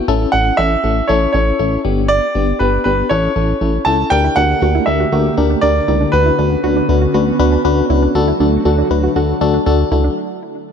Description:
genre	pop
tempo	119 BPM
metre	4/4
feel	straight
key	D major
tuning	A4 = 440 Hz
part	FM electric piano with tremolo	accompaniment	0.0-10.1 s	B3 to B4	-18 LUFS	left 6 dB	none
part	chorused synth bass	bass	0.1-10.1 s	G1 to D2	-17 LUFS	right 1 dB	none
part	clear baby grand piano	melody	0.3-6.8 s	B4 to A5	-17 LUFS	right 2 dB	ping-pong delay
part	phased analog pad	sustained chords	4.3-10.1 s	D3 to G4	-20 LUFS	right 1 dB	phaser, chorus
part	soft round pluck	arpeggios	4.2-10.1 s	D4 to F#4	-23 LUFS	right 8 dB	chorus, ping-pong delay
room	light reverb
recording	none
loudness	-12 LUFS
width	side -7 dB against mid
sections	0.0-4.1 A section; 4.1-10.7 B section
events	stop 10.2-10.7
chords	0.1 A; 1.8 G; 3.1 A; 4.1 Gmadd9/D; 6.1 Bmadd9/D; 8.2 D; 10.2 N.C.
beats	| 0.08 0.59 1.09 1.60 | 2.10 2.60 3.11 3.61 | 4.12 4.62 5.12 5.63 | 6.13 6.64 7.14 7.65 | 8.15 8.65 9.16 9.66

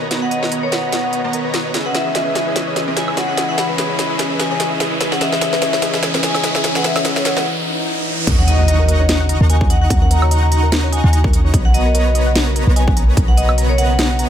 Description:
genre	future bass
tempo	147 BPM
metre	4/4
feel	swing 56% on 16ths, half-time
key	C# dorian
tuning	A4 = 440 Hz
part	airy breathy pad	sustained chords	0.0-14.3 s	C#3 to A#5	-26 LUFS	equal	chorus, sidechain pumping
part	soft round pluck	arpeggios	0.0-14.2 s	A#4 to A#5	-29 LUFS	left 4 dB	chorus, sidechain pumping, ping-pong delay
part	dense compressed supersaw	riff	0.0-14.3 s	B3 to C#6	-22 LUFS	equal	sidechain pumping, low-pass filter
part	riser, swell and impact	sound effects	0.2-9.9 s	none	-24 LUFS	equal	none
part	trap drum kit	drums	0.1-14.3 s	crash cymbal, hi-hat, snare drum, woodblock	-21 LUFS	equal	high-pass filter on snare, high-pass filter on hats, high-pass filter on perc, high-pass filter on cymbals
part	vibraphone with medium hard mallets	melody	0.2-14.3 s	C#5 to B5	-22 LUFS	left 1 dB	vintage 12-bit sampler grit, sidechain pumping, tape echo
part	warm 808-style bass	bass	8.3-14.3 s	B1 to D#2	-14 LUFS	equal	sidechain pumping
part	electronic kick drum	drums	8.3-13.3 s	none	-15 LUFS	equal	none
room	light reverb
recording	none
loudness	-14 LUFS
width	side -9 dB against mid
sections	0.0-8.3 A section; 8.3-14.3 B section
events	build-up 0.0-8.3; drum fill 0.0-7.5; filter sweep on analog synth pad 0.0-8.3; riser 0.2-8.3; break 7.5-8.3; swell 7.5-8.3; drop 8.3-14.3; impact 8.3-9.9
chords	0.0 Bmaj7; 1.7 C#m9; 8.3 D#m7; 11.5 Bmaj7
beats	| 0.11 0.52 0.93 1.33 | 1.74 2.15 2.56 2.97 | 3.38 3.78 4.19 4.60 | 5.01 5.42 5.82 6.23 | 6.64 7.05 7.46 7.86 | 8.27 8.68 9.09 9.50 | 9.90 10.31 10.72 11.13 | 11.54 11.95 12.35 12.76 | 13.17 13.58 13.99

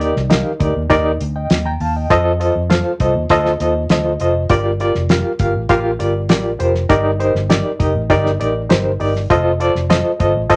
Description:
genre	uptempo 1960s-style soul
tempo	100 BPM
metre	4/4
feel	straight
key	unclear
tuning	A4 = 440 Hz
part	barky reed electric piano	accompaniment	0.0-10.6 s	G2 to Bb5	-18 LUFS	equal	overdrive, tremolo
part	vintage muted fingered electric bass	bass	0.0-10.6 s	F1 to F2	-23 LUFS	equal	none
part	cloth-damped thuddy drum kit	drums	0.0-10.6 s	hi-hat, kick drum, snare drum	-20 LUFS	equal	none
room	wet studio ambience, RT60 0.5 s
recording	none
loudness	-16 LUFS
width	mono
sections	0.0-10.6 A section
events	none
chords	0.0 Ebmaj7; 2.1 F7; 4.5 Gm7; 6.9 Ebmaj7; 9.3 F7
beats	0.30 0.90 1.50 | 2.10 2.70 3.30 3.90 | 4.50 5.10 5.70 6.30 | 6.90 7.50 8.10 8.70 | 9.30 9.90 10.50

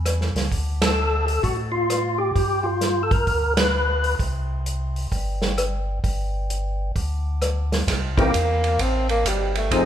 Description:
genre	soul jazz organ trio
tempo	130 BPM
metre	4/4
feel	swing 65% on 8ths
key	C mixolydian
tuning	A4 = 441 Hz
part	tonewheel organ	bass	0.0-9.9 s	F1 to A2	-24 LUFS	equal	stopped rotary speaker
part	warm soul drum kit	drums	0.1-9.9 s	hi-hat, kick drum, ride cymbal, rim click, snare drum	-24 LUFS	right 1 dB	none
part	percussive tonewheel organ	melody	0.8-4.2, 8.2-9.9 s	E3 to B4	-22 LUFS	left 1 dB	slow rotary speaker, overdrive, chorus vibrato
part	breathy tenor saxophone	melody	8.2-9.7 s	G3 to C4	-23 LUFS	equal	none
room	moderate large studio reverb, RT60 1.4 s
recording	band playing live in one room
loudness	-20 LUFS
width	side -10 dB against mid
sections	0.0-7.9 A section; 7.9-9.9 B section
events	band accent 0.7, 3.5; tenor saxophone solo 7.9-9.9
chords	0.0 A (rootless); 0.5 Dm; 2.4 G; 4.2 C5; 6.0 G5; 7.9 C7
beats	0.05 | 0.51 0.97 1.43 1.89 | 2.35 2.81 3.27 3.73 | 4.19 4.65 5.11 5.57 | 6.03 6.49 6.95 7.41 | 7.87 8.33 8.79 9.25 | 9.71

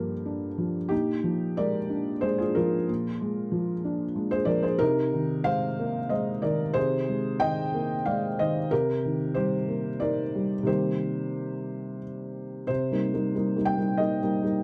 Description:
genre	neoclassical minimalist piano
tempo	92 BPM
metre	3/4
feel	rubato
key	C minor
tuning	A4 = 440 Hz
part	felt-muted upright piano	solo	0.0-14.6 s	G2 to G5	-28 LUFS	equal	none
room	light reverb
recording	dark, warm production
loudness	-27 LUFS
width	mono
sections	0.0-12.7 A section; 12.7-14.6 B section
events	none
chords	0.0 Gm7; 0.9 Bb7; 4.8 Abadd9/C; 8.7 Cm7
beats	0.26 | 0.91 1.58 2.23 | 2.88 3.52 4.16 | 4.80 5.47 6.11 | 6.76 7.42 8.06 | 8.71 9.35 10.00 | 10.67 11.34 12.02 | 12.69 13.35 14.01

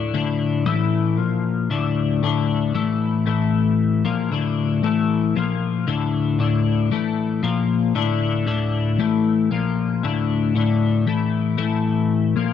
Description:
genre	rock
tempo	115 BPM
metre	4/4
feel	straight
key	D minor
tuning	A4 = 437 Hz
part	twelve-string electric guitar	solo	0.0-12.5 s	D2 to Bb3	-18 LUFS	left 5 dB	rotary speaker
room	moderate echo chamber reverb, RT60 2.6 s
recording	none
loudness	-18 LUFS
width	side -9 dB against mid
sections	0.0-12.5 A section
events	none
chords	0.0 D5; 0.7 A5; 1.2 Bb5; 1.7 D5; 2.8 A5; 4.1 Dm; 4.8 A5; 5.4 Bb5; 5.9 D5; 6.9 A5; 7.4 Bb5; 8.0 D5; 9.0 A5; 9.5 Bb5; 10.0 D5; 11.1 A5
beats	| 0.15 0.67 1.19 1.71 | 2.23 2.76 3.28 3.80 | 4.32 4.84 5.36 5.88 | 6.40 6.92 7.44 7.96 | 8.48 8.99 9.51 10.03 | 10.55 11.07 11.59 12.11

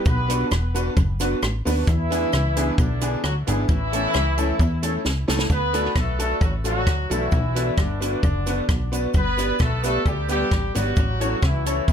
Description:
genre	ska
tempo	132 BPM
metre	4/4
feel	straight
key	D major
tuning	A4 = 440 Hz
part	warm horn section	melody	0.0-11.9 s	D3 to B4	-26 LUFS	left 1 dB	tape echo
part	plucky analog bass	bass	0.1-11.9 s	E1 to E2	-24 LUFS	equal	none
part	compact cocktail drum kit	drums	0.1-11.9 s	hi-hat, kick drum, rim click, snare drum	-23 LUFS	equal	none
part	cabasa	percussion	0.1-11.9 s	none	-40 LUFS	right 7 dB	tape echo
part	mellow electric guitar	accompaniment	0.3-11.9 s	D4 to D5	-30 LUFS	right 2 dB	analog chorus, tape echo
part	bright upright piano	stabs	0.3-11.8 s	A3 to C#5	-29 LUFS	left 1 dB	tape echo
room	moderate small room reverb, RT60 0.5 s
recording	none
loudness	-19 LUFS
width	side -8 dB against mid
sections	0.0-5.5 A section; 5.5-11.9 B section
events	drum fill 5.0-5.5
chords	0.1 Bm; 1.9 E7; 3.7 A; 5.5 D; 7.3 Bm; 9.1 G; 11.0 A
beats	| 0.06 0.51 0.97 1.42 | 1.87 2.33 2.78 3.23 | 3.69 4.14 4.59 5.05 | 5.50 5.96 6.41 6.87 | 7.32 7.78 8.23 8.69 | 9.14 9.60 10.05 10.51 | 10.96 11.42 11.88

